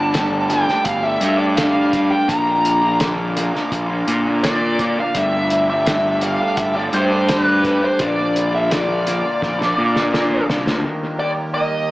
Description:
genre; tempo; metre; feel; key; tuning
psychedelic rock; 84 BPM; 4/4; straight; unclear; A4 = 440 Hz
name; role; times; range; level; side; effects
bluesy overdriven lead guitar; melody; 0.0-11.9 s; B4 to Bb5; -19 LUFS; equal; wah, distortion, analog delay
rich chamber string section; sustained chords; 0.0-11.9 s; Eb3 to D6; -29 LUFS; right 1 dB; none
electric guitar through a small old amp; riff; 0.0-11.9 s; Bb2 to G4; -21 LUFS; left 1 dB; phaser, analog delay
fuzz picked electric bass; bass; 0.0-10.8 s; G1 to Bb2; -22 LUFS; equal; overdrive
cloth-damped thuddy drum kit; drums; 0.1-10.8 s; hi-hat, kick drum, snare drum; -24 LUFS; equal; analog delay
room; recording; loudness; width
light reverb, studio ambience; echo-heavy mix, small speaker sound; -16 LUFS; side -18 dB against mid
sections
0.0-10.8 A section; 10.8-11.9 B section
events
drum fill 9.4-10.8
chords
0.0 Gsus2; 2.3 Bb; 5.1 Gsus2; 8.0 Bb; 10.8 Eb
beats
0.14 0.85 1.57 | 2.29 3.00 3.72 4.43 | 5.14 5.86 6.57 7.29 | 8.00 8.71 9.42 10.14 | 10.85 11.56

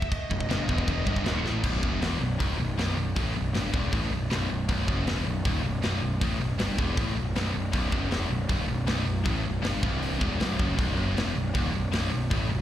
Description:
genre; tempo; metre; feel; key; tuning
heavy metal; 157 BPM; 4/4; straight; B phrygian dominant; A4 = 440 Hz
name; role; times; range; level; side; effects
high-gain lead guitar; melody; 0.0-1.4 s; D#5; -37 LUFS; right 1 dB; distortion, slapback echo, ping-pong delay
tight metal drum kit; drums; 0.0-12.4 s; china cymbal, crash cymbal, hi-hat, kick drum, snare drum; -31 LUFS; equal; none
scooped high-gain guitar; riff; 0.3-12.6 s; B1 to A2; -33 LUFS; right 7 dB; distortion, slapback echo
tight distorted guitar; riff; 0.3-12.6 s; B1 to A2; -32 LUFS; left 9 dB; distortion, slapback echo
fuzz picked electric bass; bass; 0.3-12.6 s; B0 to A1; -29 LUFS; equal; overdrive
room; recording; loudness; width
small room ambience; live gig heard through the venue's PA, recital hall reverb; -25 LUFS; side -12 dB against mid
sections
0.0-1.6 A section; 1.6-12.6 B section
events
drum fill 1.4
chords
0.0 B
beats
| 0.11 0.49 0.87 1.25 | 1.63 2.02 2.40 2.78 | 3.16 3.54 3.92 4.30 | 4.68 5.07 5.45 5.83 | 6.21 6.59 6.97 7.35 | 7.73 8.11 8.49 8.88 | 9.26 9.64 10.02 10.40 | 10.78 11.16 11.54 11.93 | 12.31

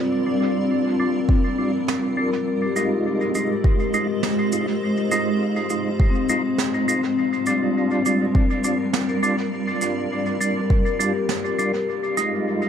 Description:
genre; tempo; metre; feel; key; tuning
ambient dub; 102 BPM; 4/4; swing 57% on 16ths; unclear; A4 = 440 Hz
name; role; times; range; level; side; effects
granular cloud pad; sustained chords; 0.0-12.7 s; G3 to Eb5; -25 LUFS; right 2 dB; built-in reverb
vibraphone with soft mallets; arpeggios; 0.0-12.7 s; C4 to Bb4; -24 LUFS; left 5 dB; low-pass filter, dub echo
percussive tonewheel organ; stabs; 0.4-12.7 s; G3 to F4; -25 LUFS; right 2 dB; chorus vibrato, slow rotary speaker, vintage 12-bit sampler grit, low-pass filter, dub echo
electronic kick drum; drums; 1.3-10.8 s; none; -18 LUFS; equal; none
snare drum and shaker; drums; 1.9-12.3 s; none; -31 LUFS; right 5 dB; dub echo
room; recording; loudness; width
moderate plate reverb, RT60 1.8 s; echo-heavy mix; -19 LUFS; side -8 dB against mid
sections
0.0-12.7 A section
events
filter sweep on tonewheel organ 0.0-12.7; filter sweep on vibraphone 0.0-12.7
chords
0.0 Bb69/G; 2.5 Fm7; 7.2 Bb69/G; 11.9 Fm7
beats
| 0.11 0.70 1.29 1.88 | 2.47 3.06 3.64 4.23 | 4.82 5.41 6.00 6.58 | 7.17 7.76 8.35 8.94 | 9.53 10.11 10.70 11.29 | 11.88 12.47

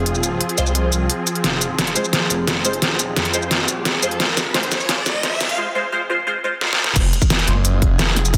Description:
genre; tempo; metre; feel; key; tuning
dark technical drum and bass; 174 BPM; 4/4; straight; F minor; A4 = 440 Hz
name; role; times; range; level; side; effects
swarming drone; sustained chords; 0.0-8.4 s; F3 to Ab4; -28 LUFS; equal; built-in reverb, sidechain pumping
phased detuned saw bass; bass; 0.0-8.4 s; Eb1 to F2; -25 LUFS; equal; phaser, overdrive
dubstep drum kit; drums; 0.1-8.4 s; crash cymbal, hi-hat, shaker, snare drum; -21 LUFS; equal; soft clipping on snare
filtered dub chord stab; stabs; 0.6-7.6 s; Ab3 to C5; -27 LUFS; equal; phaser, ensemble chorus, tape echo
riser; sound effects; 2.8-5.6 s; none; -30 LUFS; equal; none
electronic kick drum; drums; 7.0-8.4 s; none; -20 LUFS; equal; none
room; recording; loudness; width
moderate plate reverb, RT60 1.8 s; dense, heavily limited modern master, high-pass filter; -19 LUFS; mono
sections
0.0-7.0 A section; 7.0-8.4 B section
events
build-up 0.0-7.0; filter sweep 0.0-7.0; drum fill 1.4-5.6, 6.6-7.0; riser 2.8-5.6; drop 7.0-8.4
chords
0.0 Fm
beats
| 0.06 0.41 0.75 1.10 | 1.44 1.79 2.13 2.48 | 2.82 3.17 3.51 3.85 | 4.20 4.54 4.89 5.23 | 5.58 5.92 6.27 6.61 | 6.96 7.30 7.65 7.99 | 8.34

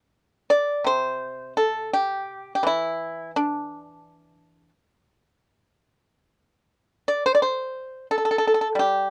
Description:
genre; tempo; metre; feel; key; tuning
chinese traditional; 87 BPM; 4/4; uneven beats, rubato; G zhi mode; A4 = 439 Hz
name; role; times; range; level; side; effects
pipa; solo; 0.5-9.1 s; C3 to D5; -24 LUFS; equal; none
room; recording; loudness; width
light reverb; dry, close 1970s-style studio recording; -24 LUFS; mono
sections
0.5-9.1 A section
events
none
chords
none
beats
| 0.48 1.20 1.91 2.62 | 3.32 4.01 4.71 5.40 | 6.08 6.75 7.43 8.10 | 8.77

